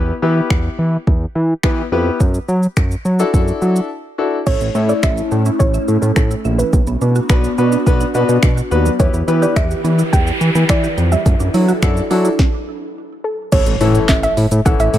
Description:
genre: dance-pop.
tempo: 106 BPM.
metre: 4/4.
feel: straight.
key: unclear.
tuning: A4 = 435 Hz.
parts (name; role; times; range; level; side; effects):
clear concert grand piano; accompaniment; 0.0-15.0 s; E3 to B4; -20 LUFS; left 5 dB; sidechain pumping.
fat analog bass; bass; 0.0-15.0 s; A1 to F#3; -16 LUFS; equal; sidechain pumping.
smooth R&B drum kit; drums; 0.5-15.0 s; crash cymbal, finger snaps, handclaps, hi-hat, kick drum, shaker, snare drum; -16 LUFS; equal; overdrive.
soft round pluck; melody; 4.5-15.0 s; A4 to G5; -22 LUFS; right 1 dB; chorus, digital delay.
airy breathy pad; sustained chords; 4.5-12.4 s; E3 to B4; -23 LUFS; equal; chorus, phaser, sidechain pumping.
mallet-like synth pluck; arpeggios; 4.5-12.4 s; E3 to G5; -27 LUFS; right 9 dB; chorus, sidechain pumping, digital delay.
noise sweep and impact; sound effects; 9.5-15.0 s; none; -26 LUFS; equal; none.
room: digital ambience.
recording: none.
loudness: -13 LUFS.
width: side -12 dB against mid.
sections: 0.0-4.5 A section; 4.5-13.5 B section; 13.5-15.0 C section.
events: break 3.9-4.5; noise sweep 9.5-13.5; stop 12.4-13.5; impact 13.5-15.0.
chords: 0.0 Em; 2.2 Dadd9/F#; 4.5 A; 6.7 Bm; 9.0 Em; 11.3 Dadd9/F#; 13.5 A.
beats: 0.51 1.07 1.64 | 2.20 2.77 3.33 3.90 | 4.47 5.03 5.60 6.17 | 6.73 7.30 7.86 8.43 | 8.99 9.56 10.13 10.69 | 11.26 11.82 12.39 12.96 | 13.52 14.09 14.66.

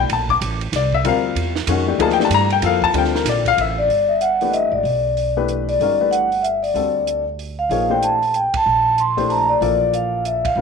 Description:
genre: modal jazz.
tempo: 189 BPM.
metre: 3/4.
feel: swing 62% on 8ths.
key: unclear.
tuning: A4 = 441 Hz.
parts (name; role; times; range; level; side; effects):
warm baby grand piano; accompaniment; 0.0-10.6 s; D3 to D6; -19 LUFS; left 8 dB; none.
upright bass; bass; 0.0-10.6 s; G1 to G2; -25 LUFS; right 2 dB; none.
compact cocktail drum kit; drums; 0.1-10.5 s; hi-hat, kick drum, ride cymbal, snare drum; -29 LUFS; right 9 dB; none.
vibraphone with soft mallets; melody; 3.8-10.6 s; D5 to C6; -17 LUFS; equal; none.
room: moderate plate reverb, RT60 1.5 s, small room ambience.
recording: 1960s-style stereo with parts hard left and right.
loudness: -16 LUFS.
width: side -5 dB against mid.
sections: 0.0-3.9 A section; 3.9-10.6 B section.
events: band accent 8.5, 10.4.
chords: 0.1 Bbmaj9; 3.9 Gmaj9; 7.7 Bbmaj9.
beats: | 0.10 0.41 0.73 | 1.05 1.36 1.68 | 1.99 2.31 2.62 | 2.94 3.26 3.57 | 3.89 4.21 4.53 | 4.84 5.16 5.48 | 5.80 6.11 6.43 | 6.75 7.07 7.39 | 7.70 8.02 8.34 | 8.66 8.97 9.29 | 9.61 9.93 10.25 | 10.56.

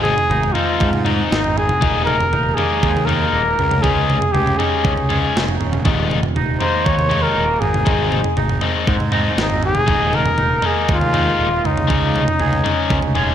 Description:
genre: indie rock.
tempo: 119 BPM.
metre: 4/4.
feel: straight.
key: unclear.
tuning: A4 = 439 Hz.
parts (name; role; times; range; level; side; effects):
breathy trumpet; melody; 0.0-13.3 s; Eb4 to Db5; -19 LUFS; left 1 dB; digital delay.
biting overdriven guitar; riff; 0.0-13.3 s; Eb3 to Ab4; -22 LUFS; left 7 dB; none.
twangy electric guitar; riff; 0.0-13.3 s; Eb2 to Ab4; -25 LUFS; right 7 dB; lush chorus, digital delay.
fuzz picked electric bass; bass; 0.0-13.3 s; Eb1 to Ab2; -22 LUFS; right 1 dB; overdrive.
clean 12-bit digital drum machine; drums; 0.1-13.3 s; kick drum, snare drum, toms; -21 LUFS; right 1 dB; overdrive, gated reverb.
room: moderate lush hall reverb, RT60 1.5 s.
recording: bright 1980s-style digital production.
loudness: -15 LUFS.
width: side -10 dB against mid.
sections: 0.0-13.3 A section.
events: none.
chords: 0.0 Ab6; 1.8 Ebsus4; 3.6 Dbsus2; 5.8 Ebsus4; 7.6 Ab; 9.9 Ebsus4; 11.6 Dbsus2.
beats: 0.30 0.80 1.31 | 1.81 2.32 2.82 3.33 | 3.83 4.34 4.84 5.35 | 5.85 6.35 6.86 7.36 | 7.87 8.37 8.87 9.38 | 9.88 10.39 10.89 11.39 | 11.90 12.40 12.90.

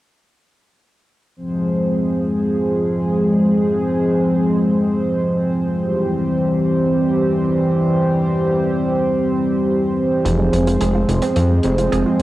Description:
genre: synthwave.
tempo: free time.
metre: none.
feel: none.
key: F harmonic minor.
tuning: A4 = 439 Hz.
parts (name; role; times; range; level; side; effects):
chorused pulse-width pad; sustained chords; 1.4-12.2 s; E3 to C5; -16 LUFS; equal; cassette tape.
fat analog bass; bass; 10.2-12.2 s; F1 to F2; -18 LUFS; equal; tube saturation.
analog pluck; arpeggios; 10.3-12.2 s; F3 to Ab4; -26 LUFS; right 4 dB; chorus, cassette tape, analog delay.
hi-hat; drums; 10.3-12.2 s; none; -32 LUFS; right 1 dB; none.
room: wet studio reverb, RT60 0.7 s.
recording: home recording on cassette.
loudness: -15 LUFS.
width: side -16 dB against mid.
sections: 1.4-12.2 A section.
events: none.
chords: 1.4 Fm; 5.8 C; 10.3 Fm.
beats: free time.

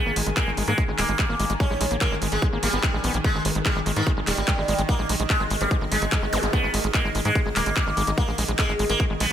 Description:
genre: psychedelic trance.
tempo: 146 BPM.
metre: 4/4.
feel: straight.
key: G# harmonic minor.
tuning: A4 = 441 Hz.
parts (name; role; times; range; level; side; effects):
sitar; melody; 0.0-9.3 s; D#3 to C#4; -27 LUFS; equal; phaser, sidechain pumping, dub echo.
evolving wavetable pad; sustained chords; 0.0-9.3 s; D#3 to G#5; -31 LUFS; right 1 dB; chorus, built-in reverb, sidechain pumping.
overdriven acid bass; riff; 0.1-9.3 s; G#3 to B3; -31 LUFS; equal; auto-pan, sidechain pumping, digital delay.
tight sequencer bass; bass; 0.1-9.3 s; D#1 to G#2; -27 LUFS; equal; none.
big-room dance drum kit; drums; 0.2-9.3 s; handclaps, hi-hat; -28 LUFS; equal; overdrive, small room ambience.
electronic kick drum; drums; 0.4-9.1 s; none; -26 LUFS; equal; small room ambience.
vowel-sweep wobble bass; second line; 3.5-6.9 s; B3; -38 LUFS; right 4 dB; none.
zap; sound effects; 6.3-6.4 s; none; -31 LUFS; equal; none.
room: little or no reverb.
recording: none.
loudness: -20 LUFS.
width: side -10 dB against mid.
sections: 0.0-9.3 A section.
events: none.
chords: 0.0 G#5.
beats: 0.37 0.78 1.19 | 1.60 2.01 2.42 2.83 | 3.24 3.65 4.07 4.48 | 4.89 5.30 5.71 6.12 | 6.53 6.94 7.35 7.76 | 8.18 8.59 9.00.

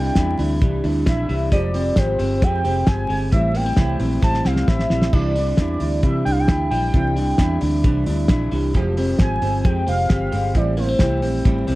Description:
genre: jangly indie pop.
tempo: 133 BPM.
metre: 4/4.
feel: straight.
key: C major.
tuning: A4 = 445 Hz.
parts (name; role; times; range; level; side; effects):
warm velvety synth lead; melody; 0.0-11.2 s; C5 to A5; -24 LUFS; equal; chorus, slapback echo.
fingerpicked plugged-in steel-string acoustic guitar; accompaniment; 0.0-11.8 s; A2 to G4; -25 LUFS; right 3 dB; none.
electric guitar through a small old amp; arpeggios; 0.0-11.8 s; A2 to G4; -25 LUFS; left 2 dB; slapback echo.
vintage muted fingered electric bass; bass; 0.0-11.8 s; F1 to C3; -22 LUFS; equal; none.
cloth-damped thuddy drum kit; drums; 0.2-11.8 s; crash cymbal, hi-hat, kick drum, snare drum; -19 LUFS; equal; none.
room: little or no reverb.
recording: dry, close 1970s-style studio recording, vinyl crackle.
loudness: -17 LUFS.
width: side -18 dB against mid.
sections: 0.0-11.8 A section.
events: drum fill 4.2-5.1.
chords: 0.0 Cadd9; 1.5 Fmadd9; 3.3 Am7; 5.1 Cadd9; 8.7 Fmadd9; 10.6 Am7.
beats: 0.17 0.62 1.07 | 1.52 1.97 2.42 2.87 | 3.33 3.78 4.23 4.68 | 5.13 5.58 6.04 6.49 | 6.94 7.39 7.84 8.29 | 8.75 9.20 9.65 10.10 | 10.55 11.01 11.46.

